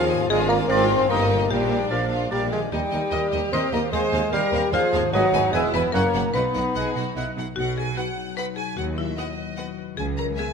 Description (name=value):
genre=cinematic, playful, whimsical film cue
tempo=149 BPM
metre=3/4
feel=straight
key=Eb major, B major from 5.1 s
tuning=A4 = 445 Hz
part: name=buzzing marimba with hard mallets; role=melody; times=0.0-10.5 s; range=D#4 to C5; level=-31 LUFS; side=left 8 dB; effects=none
part: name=rich studio violin section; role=melody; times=0.0-10.5 s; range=D5 to Ab5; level=-34 LUFS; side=left 3 dB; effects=none
part: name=clear oboe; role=second line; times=0.0-7.3 s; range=D5 to F#5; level=-32 LUFS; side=right 2 dB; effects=none
part: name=mellow clarinet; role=second line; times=0.0-7.3 s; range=Bb4 to D#5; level=-37 LUFS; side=left 1 dB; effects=none
part: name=mellow hollow silver concert flute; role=second line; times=0.0-7.1 s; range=F5 to C6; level=-29 LUFS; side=left 2 dB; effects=none
part: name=warm studio violin section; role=second line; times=0.0-10.5 s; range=C4 to B5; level=-33 LUFS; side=left 3 dB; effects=none
part: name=mellow bassoon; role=accompaniment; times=0.0-7.2 s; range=F3 to C4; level=-25 LUFS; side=right 3 dB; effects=none
part: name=rich studio viola section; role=accompaniment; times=0.0-10.5 s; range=B3 to C5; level=-30 LUFS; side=equal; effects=none
part: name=mellow French horn section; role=sustained chords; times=0.0-7.2 s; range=F3 to C4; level=-28 LUFS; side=left 6 dB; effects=none
part: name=concert harp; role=arpeggios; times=0.0-10.5 s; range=E2 to Eb5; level=-34 LUFS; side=left 11 dB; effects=none
part: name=clear studio cello section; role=bass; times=0.0-10.3 s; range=C#2 to B2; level=-31 LUFS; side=right 4 dB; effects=none
part: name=mellow tuba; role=bass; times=0.0-10.3 s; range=E1 to Eb2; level=-32 LUFS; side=right 5 dB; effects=none
part: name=rich studio double bass section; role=bass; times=0.0-10.3 s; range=E1 to Eb2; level=-33 LUFS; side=right 3 dB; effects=none
room=moderate scoring stage reverb, RT60 1.8 s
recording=none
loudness=-20 LUFS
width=side -6 dB against mid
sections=0.0-7.6 A section; 7.6-10.5 B section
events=none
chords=0.3 Bb7/Ab; 1.1 Eb/G; 1.5 Bb; 2.7 Eb; 3.9 Fm/Eb; 5.1 G#m; 5.5 E; 5.9 F#; 6.3 B; 8.8 B/D#; 10.0 C#7(no3)